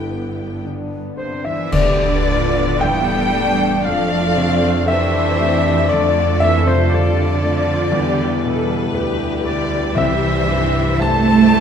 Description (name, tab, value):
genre	cinematic, emotional film score for orchestra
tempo	58 BPM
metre	4/4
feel	rubato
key	unclear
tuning	A4 = 440 Hz
part	rich symphonic violin section	melody	0.0-11.6 s	A4 to G5	-27 LUFS	left 6 dB	none
part	warm symphonic violin section	second line	0.0-11.6 s	G4 to A5	-27 LUFS	left 3 dB	none
part	dark symphonic viola section	accompaniment	0.0-11.6 s	D3 to A4	-25 LUFS	right 1 dB	none
part	warm grand piano	accompaniment	0.0-11.6 s	C2 to A5	-22 LUFS	left 3 dB	none
part	warm French horn section	sustained chords	0.0-11.6 s	G3 to E4	-24 LUFS	left 4 dB	none
part	rich symphonic double bass section	bass	0.0-11.6 s	G1 to F2	-22 LUFS	right 2 dB	none
part	warm symphonic cello section	bass	0.0-11.6 s	G2 to A3	-21 LUFS	right 4 dB	none
part	clear oboe	second line	1.2-11.6 s	C5 to A5	-25 LUFS	right 2 dB	none
part	mellow hollow concert flute	second line	1.2-11.6 s	C5 to A5	-26 LUFS	left 2 dB	none
part	clash cymbals and concert bass drum	percussion	1.7-3.8 s	none	-25 LUFS	equal	none
part	timpani	percussion	10.0-11.5 s	C3	-26 LUFS	left 1 dB	none
room	moderate scoring stage reverb, RT60 1.6 s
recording	minimal, uncompressed stereo recording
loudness	-15 LUFS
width	side -7 dB against mid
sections	0.0-1.7 A section; 1.7-11.6 B section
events	band accent 1.7-2.8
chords	0.0 G; 1.7 Dm; 3.8 F; 7.9 Em; 10.0 C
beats	0.64 | 1.72 2.81 3.85 4.88 | 5.91 6.93 7.94 8.95 | 9.96 11.00